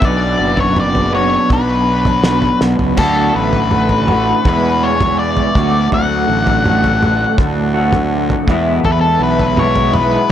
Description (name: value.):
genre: psychedelic rock.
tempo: 82 BPM.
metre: 4/4.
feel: straight.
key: D lydian.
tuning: A4 = 440 Hz.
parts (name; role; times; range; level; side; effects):
octave-fuzz lead guitar; melody; 0.0-10.3 s; A4 to F#5; -17 LUFS; left 3 dB; distortion, analog delay.
dark studio string section; sustained chords; 0.0-10.3 s; E3 to B4; -25 LUFS; right 5 dB; none.
electric guitar through a small old amp; riff; 0.0-10.3 s; D2 to B4; -16 LUFS; equal; tremolo, double-tracked left and right, analog delay.
fuzz fingered electric bass; bass; 0.0-10.2 s; F#1 to E2; -19 LUFS; equal; overdrive.
cloth-damped thuddy drum kit; drums; 0.0-10.3 s; crash cymbal, kick drum, snare drum, toms; -18 LUFS; right 1 dB; none.
room: light reverb, small room reverb.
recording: echo-heavy mix.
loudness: -11 LUFS.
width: side -10 dB against mid.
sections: 0.0-10.3 A section.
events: drum fill 2.6-3.0.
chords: 0.0 Bm; 3.0 D; 4.5 E; 5.6 D; 8.5 E.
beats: | 0.02 0.77 1.51 2.25 | 2.99 3.72 4.46 5.19 | 5.93 6.66 7.39 8.12 | 8.85 9.58 10.31.